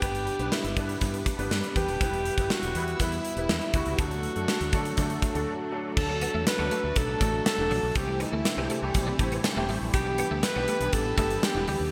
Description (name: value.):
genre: 1980s-style pop.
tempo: 121 BPM.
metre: 4/4.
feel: straight.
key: G major.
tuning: A4 = 440 Hz.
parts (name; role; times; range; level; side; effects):
breathy alto saxophone; melody; 0.0-11.9 s; E4 to B4; -33 LUFS; equal; none.
clear concert grand piano; accompaniment; 0.0-11.9 s; E3 to B4; -35 LUFS; equal; ensemble chorus.
string machine, full ensemble; sustained chords; 0.0-11.9 s; C3 to E4; -41 LUFS; equal; phaser, ensemble chorus.
mellow fretless electric bass; bass; 0.0-11.9 s; Eb1 to D3; -35 LUFS; equal; none.
gated 80s drum kit; drums; 0.0-11.8 s; crash cymbal, hi-hat, kick drum, snare drum; -31 LUFS; equal; gated reverb.
twelve-string electric guitar; riff; 6.1-11.8 s; F#3 to B3; -38 LUFS; equal; ensemble chorus, digital delay.
room: moderate lush hall reverb, RT60 2.2 s.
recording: bright 1980s-style digital production.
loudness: -27 LUFS.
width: mono.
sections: 0.0-6.0 A section; 6.0-11.9 B section.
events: break 5.5-6.0.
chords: 0.0 G; 2.0 Em; 4.0 D; 8.0 C6; 9.9 G6/B.